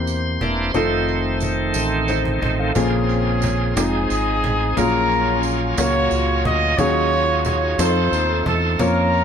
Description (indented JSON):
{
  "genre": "slow gospel",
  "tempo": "60 BPM (dotted quarters)",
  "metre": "6/8",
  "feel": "straight",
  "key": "unclear",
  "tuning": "A4 = 440 Hz",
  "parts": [
    { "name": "warm grand piano", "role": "accompaniment", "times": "0.0-9.2 s", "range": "Bb2 to F5", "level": "-23 LUFS", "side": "left 3 dB", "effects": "none" },
    { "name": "bright tonewheel organ", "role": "sustained chords", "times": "0.0-9.2 s", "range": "Db3 to F5", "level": "-25 LUFS", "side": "right 2 dB", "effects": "slow rotary speaker, overdrive" },
    { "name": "deep dub fingered electric bass", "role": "bass", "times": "0.0-9.2 s", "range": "E1 to F2", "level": "-23 LUFS", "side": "right 1 dB", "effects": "none" },
    { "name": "cajon", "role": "drums", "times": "0.1-9.2 s", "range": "none", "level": "-27 LUFS", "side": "right 1 dB", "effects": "none" },
    { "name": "tambourine", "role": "percussion", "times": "0.1-9.1 s", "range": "none", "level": "-33 LUFS", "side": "right 10 dB", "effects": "tape echo" },
    { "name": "mellow horn section", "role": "melody", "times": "2.8-9.2 s", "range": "C4 to Eb5", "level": "-20 LUFS", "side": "right 1 dB", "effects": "tape echo" }
  ],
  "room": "light reverb",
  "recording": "echo-heavy mix",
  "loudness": "-17 LUFS",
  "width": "side -8 dB against mid",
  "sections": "0.0-2.8 A section; 2.8-9.2 B section",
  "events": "tonewheel organ solo 0.0-2.8; drum fill 1.8-2.8",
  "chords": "0.0 C7; 0.7 F7; 2.8 Bbm9; 3.8 Fm7; 4.8 Gbmaj9/Bb; 6.8 Ebm11; 7.8 F7",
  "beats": "| 0.74 1.75 | 2.76 3.77 | 4.78 5.78 | 6.79 7.80 | 8.80"
}